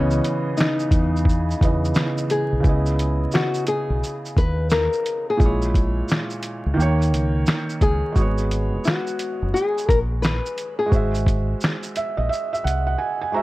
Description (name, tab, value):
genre	lo-fi hip hop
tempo	87 BPM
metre	4/4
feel	swing 64% on 16ths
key	C# dorian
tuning	A4 = 440 Hz
part	nylon-string guitar	melody	0.0-12.1 s	C#4 to B4	-25 LUFS	left 2 dB	low-pass filter
part	felt-muted upright piano	accompaniment	0.0-13.4 s	A#2 to A#5	-25 LUFS	right 2 dB	low-pass filter
part	warm analog pad	sustained chords	0.0-2.6 s	C#3 to D#5	-34 LUFS	left 1 dB	none
part	deep dub fingered electric bass	bass	0.0-12.9 s	F#1 to E2	-22 LUFS	equal	none
part	lo-fi sampler-style drum kit	drums	0.1-12.9 s	finger snaps, hi-hat, kick drum, shaker, snare drum	-21 LUFS	equal	none
room	little or no reverb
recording	vinyl crackle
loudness	-19 LUFS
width	side -18 dB against mid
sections	0.0-2.6 A section; 2.6-13.4 B section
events	drums muted 13.0-13.4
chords	0.0 C#m9; 5.4 A#m7b5; 6.8 D#7; 8.2 G#m11; 10.9 G#7b13